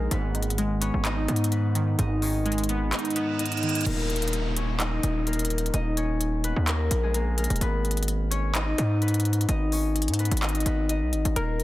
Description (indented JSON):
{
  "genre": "hip hop, trap",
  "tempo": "128 BPM",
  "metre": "4/4",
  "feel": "half-time",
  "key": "G# minor",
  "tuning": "A4 = 439 Hz",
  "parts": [
    { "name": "concert harp", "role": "melody", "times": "0.0-11.6 s", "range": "G#3 to D#5", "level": "-29 LUFS", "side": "left 3 dB", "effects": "tape echo" },
    { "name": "glassy digital keys", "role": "accompaniment", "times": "0.0-3.9 s", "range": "G#2 to D#5", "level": "-28 LUFS", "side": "right 2 dB", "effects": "chorus" },
    { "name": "distorted 808-style bass", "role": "bass", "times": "0.0-11.6 s", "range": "D#1 to G#2", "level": "-26 LUFS", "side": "equal", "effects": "distortion" },
    { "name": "trap drum kit", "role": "drums", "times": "0.1-11.6 s", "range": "crash cymbal, handclaps, hi-hat", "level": "-31 LUFS", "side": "left 1 dB", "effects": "none" },
    { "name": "reverse cymbal and downlifter", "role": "sound effects", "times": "3.1-7.6 s", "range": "none", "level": "-35 LUFS", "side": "right 3 dB", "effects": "none" },
    { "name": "hollow square pluck", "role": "second line", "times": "11.4-11.6 s", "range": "A#4", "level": "-32 LUFS", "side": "left 1 dB", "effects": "chorus" }
  ],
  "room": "little or no reverb",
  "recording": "dense, heavily limited modern master",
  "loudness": "-23 LUFS",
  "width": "side -16 dB against mid",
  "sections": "0.0-3.9 A section; 3.9-11.6 B section",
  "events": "kick muted 2.9-3.9; reverse cymbal 3.1-3.9",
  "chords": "0.1 G#m; 3.9 D#sus4; 7.6 G#m"
}